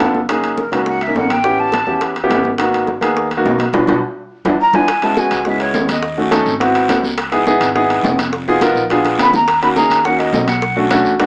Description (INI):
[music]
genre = Afro-Cuban jazz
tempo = 209 BPM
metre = 4/4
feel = straight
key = unclear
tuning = A4 = 440 Hz
[part]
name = warm baby grand piano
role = accompaniment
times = 0.0-11.3 s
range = G#3 to A#4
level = -18 LUFS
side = equal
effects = none
[part]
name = upright bass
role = bass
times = 0.0-11.3 s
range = E#1 to E2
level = -31 LUFS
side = equal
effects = none
[part]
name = bongos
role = percussion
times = 0.0-11.3 s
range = none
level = -28 LUFS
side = equal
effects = none
[part]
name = timbales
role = percussion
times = 0.0-11.3 s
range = none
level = -24 LUFS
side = equal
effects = none
[part]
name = congas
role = percussion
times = 0.1-11.3 s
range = none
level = -27 LUFS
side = equal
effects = none
[part]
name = breathy mellow jazz flute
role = melody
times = 0.6-2.0, 4.6-6.2, 9.2-10.8 s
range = A#4 to B5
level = -18 LUFS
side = equal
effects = none
[part]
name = guiro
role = percussion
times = 4.9-11.3 s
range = none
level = -31 LUFS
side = equal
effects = none
[sound]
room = moderate studio reverb, RT60 0.8 s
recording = small speaker sound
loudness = -15 LUFS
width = mono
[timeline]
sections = 0.0-4.9 A section; 4.9-11.3 B section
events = band accent 3.7-4.9; drum fill 4.0-4.9, 9.0-9.5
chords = 0.3 F#69; 1.4 A9; 2.6 G#m9; 3.7 Bm; 4.3 E5; 4.9 C#m11; 6.0 D#m7b5; 6.6 G#7alt; 7.2 C#m9; 8.3 Fm7b5; 8.9 A#7b9; 9.5 D#m7; 10.6 Bm9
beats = 0.00 | 0.29 0.58 0.86 1.15 | 1.44 1.73 2.01 2.30 | 2.59 2.88 3.16 3.45 | 3.74 4.03 4.31 4.60 | 4.89 5.17 5.46 5.75 | 6.04 6.32 6.61 6.90 | 7.18 7.47 7.76 8.04 | 8.33 8.62 8.90 9.19 | 9.48 9.77 10.05 10.34 | 10.63 10.92 11.20